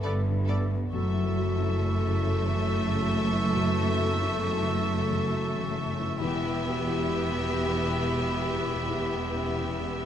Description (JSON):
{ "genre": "cinematic, emotional film score for orchestra", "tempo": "68 BPM", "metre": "3/4", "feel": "rubato", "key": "unclear", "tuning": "A4 = 440 Hz", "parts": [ { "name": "rich studio violin section", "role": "melody", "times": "0.0-10.1 s", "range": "D5 to E5", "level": "-36 LUFS", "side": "left 3 dB", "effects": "none" }, { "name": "hollow concert flute", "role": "second line", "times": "0.0-10.1 s", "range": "B5 to C#6", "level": "-38 LUFS", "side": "left 1 dB", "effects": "none" }, { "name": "rich studio violin section", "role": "second line", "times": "0.0-10.1 s", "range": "G4 to A4", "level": "-40 LUFS", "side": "left 4 dB", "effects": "none" }, { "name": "warm clarinet", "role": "second line", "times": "0.0-10.1 s", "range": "G4 to A4", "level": "-41 LUFS", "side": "left 2 dB", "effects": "none" }, { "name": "warm oboe", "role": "second line", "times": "0.0-10.1 s", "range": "D5 to E5", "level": "-38 LUFS", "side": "right 4 dB", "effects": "none" }, { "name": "felt-muted upright piano", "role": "accompaniment", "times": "0.0-10.1 s", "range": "E2 to A4", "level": "-33 LUFS", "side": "left 3 dB", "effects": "none" }, { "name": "rich studio viola section", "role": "accompaniment", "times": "0.0-10.1 s", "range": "A3 to B3", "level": "-36 LUFS", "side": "right 2 dB", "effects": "none" }, { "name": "mellow French horn section", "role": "sustained chords", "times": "0.0-10.1 s", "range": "E3 to B4", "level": "-36 LUFS", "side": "left 2 dB", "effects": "none" }, { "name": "concert harp", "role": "arpeggios", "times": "0.0-10.1 s", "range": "E2 to E4", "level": "-38 LUFS", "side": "left 10 dB", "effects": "none" }, { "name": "dark studio double bass section", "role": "bass", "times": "0.0-10.1 s", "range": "E1 to G1", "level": "-32 LUFS", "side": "right 2 dB", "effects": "none" }, { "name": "rich studio cello section", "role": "bass", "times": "0.0-10.1 s", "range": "E2 to G2", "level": "-32 LUFS", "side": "right 2 dB", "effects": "none" } ], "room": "moderate scoring stage reverb, RT60 1.4 s", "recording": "close, detailed microphones", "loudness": "-25 LUFS", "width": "side -9 dB against mid", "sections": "0.0-10.1 A section", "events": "none", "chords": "0.0 Gadd9; 0.9 F#m7; 6.2 Em", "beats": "0.05 | 0.93 1.81 2.68 | 3.55 4.43 5.32 | 6.20 7.07 7.96 | 8.87 9.79" }